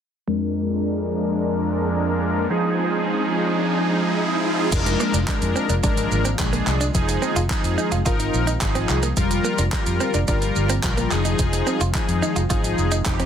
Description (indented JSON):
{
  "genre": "dance-pop",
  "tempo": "108 BPM",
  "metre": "4/4",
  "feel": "straight",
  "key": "unclear",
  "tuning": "A4 = 441 Hz",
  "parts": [
    { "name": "big bright polysynth", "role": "accompaniment", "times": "0.3-13.3 s", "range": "F2 to Bb4", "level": "-22 LUFS", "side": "left 1 dB", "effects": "chorus, sidechain pumping, low-pass filter" },
    { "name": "glassy FM pad", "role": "sustained chords", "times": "0.6-13.3 s", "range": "D3 to Ab4", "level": "-29 LUFS", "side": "equal", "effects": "ensemble chorus, built-in reverb, sidechain pumping, low-pass filter" },
    { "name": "riser", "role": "sound effects", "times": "1.6-4.7 s", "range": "none", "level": "-29 LUFS", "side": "right 2 dB", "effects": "none" },
    { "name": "vintage muted fingered electric bass", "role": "bass", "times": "4.7-13.3 s", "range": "F1 to F2", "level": "-23 LUFS", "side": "equal", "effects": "sidechain pumping" },
    { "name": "deep house drum kit", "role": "drums", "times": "4.7-13.3 s", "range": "crash cymbal, handclaps, hi-hat, kick drum, shaker", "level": "-24 LUFS", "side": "equal", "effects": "none" },
    { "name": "direct-recorded clean electric guitar", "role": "riff", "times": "4.9-13.3 s", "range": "Bb3 to F4", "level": "-28 LUFS", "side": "right 4 dB", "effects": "lush chorus" }
  ],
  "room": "light reverb",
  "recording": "dense, heavily limited modern master",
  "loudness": "-19 LUFS",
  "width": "side -8 dB against mid",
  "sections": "0.3-4.7 A section; 4.7-13.3 B section",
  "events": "filter sweep 0.3-4.7; riser 1.6-4.7",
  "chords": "0.3 Bb7/F; 2.5 Fm7; 4.7 Bb7/F; 6.9 Fm7; 9.2 Gm7/F; 11.1 Fm7",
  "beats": "| 0.28 0.84 1.39 1.95 | 2.50 3.06 3.61 4.17 | 4.72 5.28 5.84 6.39 | 6.95 7.50 8.06 8.61 | 9.17 9.72 10.28 10.84 | 11.39 11.95 12.50 13.06"
}